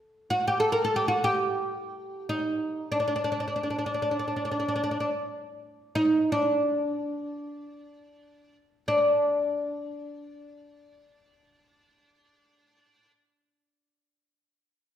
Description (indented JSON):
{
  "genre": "Arabic maqam ensemble",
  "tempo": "free time",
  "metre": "none",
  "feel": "none",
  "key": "D maqam hijaz",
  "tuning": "A4 = 437 Hz",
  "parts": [
    { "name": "oud", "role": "solo", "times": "0.3-13.1 s", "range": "D4 to Bb4", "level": "-25 LUFS", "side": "equal", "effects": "slapback echo" }
  ],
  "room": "moderate recital hall reverb, RT60 1.4 s",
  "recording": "none",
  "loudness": "-25 LUFS",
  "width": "side -10 dB against mid",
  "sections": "0.0-8.9 A section; 8.9-15.0 B section",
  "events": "slowing down 0.0-8.9",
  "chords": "none"
}